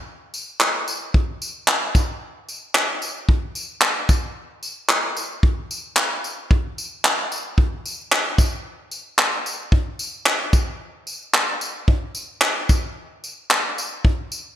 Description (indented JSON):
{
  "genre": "pop",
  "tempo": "112 BPM",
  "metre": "4/4",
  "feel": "swing 60% on 16ths",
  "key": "none",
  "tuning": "none",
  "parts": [
    { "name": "loose indie drum kit", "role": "drums", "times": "0.3-14.5 s", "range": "handclaps, kick drum, tambourine", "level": "-19 LUFS", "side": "equal", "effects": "none" }
  ],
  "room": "moderate lush hall reverb, RT60 1.6 s",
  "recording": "bright 1980s-style digital production",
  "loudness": "-19 LUFS",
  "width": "side -11 dB against mid",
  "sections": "0.0-14.6 A section",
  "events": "none",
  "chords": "none"
}